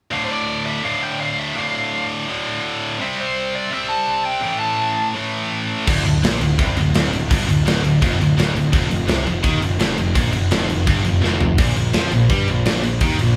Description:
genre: heavy metal.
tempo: 168 BPM.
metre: 4/4.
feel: straight.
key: D minor.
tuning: A4 = 441 Hz.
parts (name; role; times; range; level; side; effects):
dark smooth lead guitar; melody; 0.1-5.1 s; C5 to A5; -26 LUFS; equal; overdrive, tape echo.
heavy high-gain guitar; riff; 0.1-13.3 s; D2 to C4; -22 LUFS; equal; distortion.
fuzz picked electric bass; bass; 5.9-13.4 s; D1 to G2; -24 LUFS; equal; overdrive.
tight metal drum kit; drums; 5.9-13.3 s; crash cymbal, kick drum, snare drum, toms; -22 LUFS; equal; none.
room: light reverb.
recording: band playing live in one room.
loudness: -19 LUFS.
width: mono.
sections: 0.1-5.9 A section; 5.9-13.4 B section.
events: drum fill 11.2-11.6.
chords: 0.1 Dm; 3.0 C5; 4.4 A5; 5.9 N.C.; 8.7 F5; 11.6 Bb5.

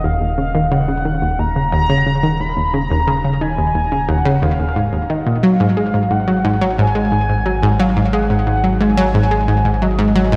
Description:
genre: ambient, sequencer-driven space music.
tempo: 89 BPM.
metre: 4/4.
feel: straight.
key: Eb minor.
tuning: A4 = 444 Hz.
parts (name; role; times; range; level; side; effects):
mellow horn-like synth lead; melody; 0.0-10.4 s; Eb5 to Cb6; -23 LUFS; equal; analog chorus, delay.
analog pluck; riff; 0.0-10.4 s; Eb2 to Ab3; -18 LUFS; equal; chorus, delay.
warm sub bass; bass; 0.0-10.4 s; Eb1 to Ab1; -26 LUFS; equal; none.
room: wet lush hall reverb, RT60 3.0 s.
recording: dreamy mix soaked in reverb.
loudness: -16 LUFS.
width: mono.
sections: 0.0-10.4 A section.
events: none.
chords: 0.0 Ebsus2; 5.4 Ab5.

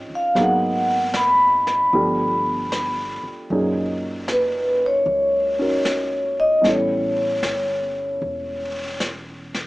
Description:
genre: jazz ballad.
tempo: 76 BPM.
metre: 4/4.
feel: swing 67% on 8ths.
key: unclear.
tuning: A4 = 441 Hz.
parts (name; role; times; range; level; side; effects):
warm baby grand piano; accompaniment; 0.0-9.7 s; A#2 to A#4; -25 LUFS; right 1 dB; none.
upright bass; bass; 0.0-9.7 s; E1 to C#2; -36 LUFS; equal; none.
vibraphone with soft mallets; melody; 0.2-9.0 s; B4 to B5; -19 LUFS; equal; none.
vintage brush drum kit; drums; 0.4-9.7 s; brushed snare drum, hi-hat, snare drum; -30 LUFS; equal; none.
room: moderate club reverb, RT60 0.8 s.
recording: small speaker sound.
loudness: -18 LUFS.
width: side -19 dB against mid.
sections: 0.0-9.7 A section.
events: none.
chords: 0.3 G#m7; 1.9 G9; 3.5 F#6; 6.6 A9.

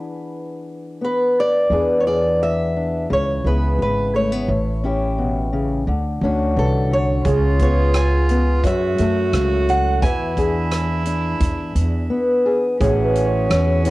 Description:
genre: acoustic folk-pop ballad.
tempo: 86 BPM.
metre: 4/4.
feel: straight.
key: unclear.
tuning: A4 = 440 Hz.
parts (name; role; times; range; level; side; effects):
picked old ladder-braced acoustic guitar; melody; 0.0-12.1 s; A4 to G#5; -23 LUFS; equal; cassette tape.
fingerpicked old ladder-braced acoustic guitar; accompaniment; 0.0-13.9 s; F#2 to A4; -21 LUFS; left 2 dB; none.
upright bass; bass; 1.7-13.9 s; G#1 to F#2; -20 LUFS; equal; none.
natural country drum kit; drums; 7.2-13.9 s; hi-hat, kick drum, rim click; -25 LUFS; equal; cassette tape.
warm cello; second line; 7.3-13.9 s; C#4 to F#4; -25 LUFS; right 3 dB; none.
felt-muted upright piano; arpeggios; 7.3-13.9 s; G#4 to C#5; -24 LUFS; right 5 dB; none.
room: light reverb, small room ambience.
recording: home recording on cassette.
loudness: -16 LUFS.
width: side -18 dB against mid.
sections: 0.0-1.7 A section; 1.7-12.8 B section; 12.8-13.9 C section.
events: none.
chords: 0.0 E7; 3.1 C#m7; 4.5 A7; 5.9 Dmaj7; 7.3 C#7; 8.6 F#m7; 10.0 E7; 12.8 A6.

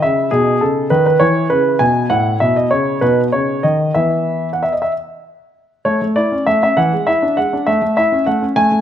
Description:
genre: classical-period piano sonatina.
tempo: 63-68 BPM (dotted quarters).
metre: 6/8.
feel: rubato.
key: E major.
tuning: A4 = 435 Hz.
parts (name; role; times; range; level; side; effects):
clear grand piano; solo; 0.0-8.8 s; A2 to G#5; -13 LUFS; equal; none.
room: moderate recital hall reverb, RT60 1.4 s.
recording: minimal, uncompressed stereo recording.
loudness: -13 LUFS.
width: side -10 dB against mid.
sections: 0.0-5.9 A section; 5.9-8.8 B section.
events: none.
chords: 0.3 B; 1.2 E5; 2.1 A; 3.0 B; 4.0 E5; 5.9 A; 6.8 E7; 7.7 A.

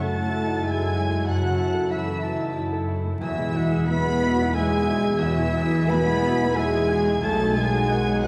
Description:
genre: cinematic.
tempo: 91 BPM.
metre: 3/4.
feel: uneven beats, rubato.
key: unclear.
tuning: A4 = 436 Hz.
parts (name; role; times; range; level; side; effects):
dark studio violin section; melody; 0.0-8.3 s; E6 to B6; -36 LUFS; equal; none.
bright silver concert flute; second line; 0.0-8.3 s; E5 to B5; -36 LUFS; equal; none.
clear oboe; second line; 0.0-8.3 s; E5 to B5; -37 LUFS; equal; none.
dark studio violin section; second line; 0.0-8.3 s; E5 to B5; -36 LUFS; equal; none.
clear grand piano; accompaniment; 0.0-8.3 s; B1 to A4; -31 LUFS; equal; none.
dark studio viola section; accompaniment; 0.0-8.3 s; D#3 to F#4; -34 LUFS; equal; none.
mellow French horn section; sustained chords; 0.0-8.3 s; E4 to B4; -30 LUFS; equal; none.
concert harp; arpeggios; 0.0-8.3 s; E2 to F#5; -33 LUFS; equal; none.
dark studio cello section; bass; 0.0-8.3 s; E3 to B3; -30 LUFS; equal; none.
warm studio double bass section; bass; 0.0-8.3 s; B1 to F#2; -32 LUFS; equal; none.
room: wet scoring stage reverb, RT60 1.5 s.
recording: heard from further back in the room, vinyl crackle.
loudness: -23 LUFS.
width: mono.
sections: 0.0-8.3 A section.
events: none.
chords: 0.0 F#m7; 3.2 Eadd9; 7.2 B7.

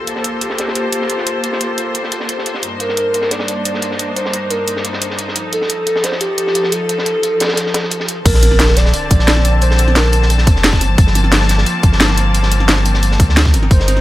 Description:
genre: liquid drum and bass.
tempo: 176 BPM.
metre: 4/4.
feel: straight.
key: Bb major.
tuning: A4 = 440 Hz.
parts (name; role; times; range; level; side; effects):
rich symphonic string section; sustained chords; 0.0-14.0 s; G2 to A5; -20 LUFS; left 2 dB; none.
crunchy breakbeat drum kit; drums; 0.1-14.0 s; hi-hat, snare drum; -24 LUFS; equal; high-pass filter on hats, low-pass filter on hats, high-pass filter on snare, low-pass filter on snare, high-pass filter on room, low-pass filter on room.
drum and bass drum kit; drums; 0.1-14.0 s; crash cymbal, hi-hat, snare drum; -17 LUFS; equal; overdrive.
hollow clarinet-like synth lead; melody; 2.8-10.3, 13.7-14.0 s; G4 to D5; -19 LUFS; equal; chorus, digital delay.
warm sub bass; bass; 8.3-14.0 s; F1 to D2; -13 LUFS; equal; tube saturation.
electronic kick drum; drums; 8.3-13.8 s; none; -11 LUFS; equal; overdrive.
sub drop; sound effects; 8.3-9.6 s; none; -22 LUFS; equal; none.
room: light reverb, small room reverb.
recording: none.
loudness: -12 LUFS.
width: side -15 dB against mid.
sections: 0.0-8.3 A section; 8.3-14.0 B section.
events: drop 8.3-14.0; impact 8.3-9.6.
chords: 0.0 Gm11; 2.6 Cm9/G; 5.4 F7; 8.3 Bbmaj9; 10.8 Gm11.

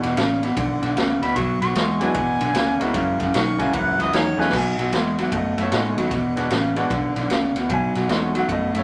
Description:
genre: electric blues shuffle.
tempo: 152 BPM.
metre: 4/4.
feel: swing 65% on 8ths.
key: B mixolydian.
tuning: A4 = 439 Hz.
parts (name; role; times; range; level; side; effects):
electric guitar through a small old amp; riff; 0.0-8.8 s; E2 to A3; -24 LUFS; equal; none.
vintage muted fingered electric bass; bass; 0.0-8.8 s; E1 to A2; -32 LUFS; equal; none.
raw garage drum kit; drums; 0.0-8.8 s; crash cymbal, kick drum, ride cymbal, snare drum; -28 LUFS; equal; none.
clear harmonica; second line; 1.2-4.5 s; G#4 to C#6; -27 LUFS; equal; overdrive.
bright grand piano; accompaniment; 2.0-8.8 s; G#3 to G#5; -29 LUFS; equal; none.
room: moderate club reverb, RT60 0.6 s.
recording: none.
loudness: -21 LUFS.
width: mono.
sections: 0.0-4.5 A section; 4.5-8.8 A section.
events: harmonica solo 0.0-4.5; drum fill 4.3.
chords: 0.0 E7(no3); 1.4 B5; 2.2 E9; 2.9 F#9; 4.5 B9; 6.1 E9; 7.7 B9.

